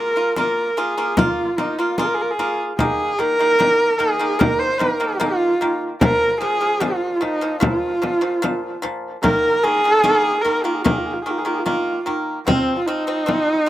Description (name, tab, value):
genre	mongolian traditional, Mongolian folk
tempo	74 BPM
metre	4/4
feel	straight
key	unclear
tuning	A4 = 440 Hz
part	clear horsehead fiddle	melody	0.0-13.7 s	C4 to C5	-18 LUFS	right 1 dB	none
part	pipa	arpeggios	0.0-13.7 s	Bb2 to F4	-23 LUFS	equal	slapback echo
part	frame drum	percussion	0.4-13.5 s	none	-20 LUFS	left 2 dB	none
room	little or no reverb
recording	recorded outdoors, with no room sound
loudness	-17 LUFS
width	side -14 dB against mid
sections	0.0-12.5 A section; 12.5-13.7 B section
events	none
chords	0.0 Bb5; 2.8 Eb5; 6.0 Bb5; 9.2 Eb5; 12.5 F5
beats	0.37 1.18 1.99 | 2.79 3.60 4.41 5.21 | 6.02 6.83 7.63 8.44 | 9.24 10.05 10.86 11.66 | 12.46 13.27